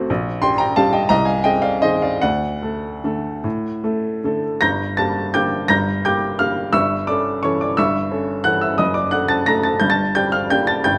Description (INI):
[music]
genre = classical, piano waltz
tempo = 143-188 BPM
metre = 3/4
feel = rubato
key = G minor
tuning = A4 = 440 Hz
[part]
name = warm upright piano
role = solo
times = 0.0-11.0 s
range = F#1 to Bb6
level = -19 LUFS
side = equal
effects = none
[sound]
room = moderate recital hall reverb, RT60 1.7 s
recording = close, detailed microphones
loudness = -19 LUFS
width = mono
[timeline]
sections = 0.0-4.6 A section; 4.6-11.0 B section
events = none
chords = 0.1 Gm/Bb; 1.1 Ab/C; 2.2 D; 4.6 Gm; 6.7 A7/G; 8.8 D/F#; 9.8 Gm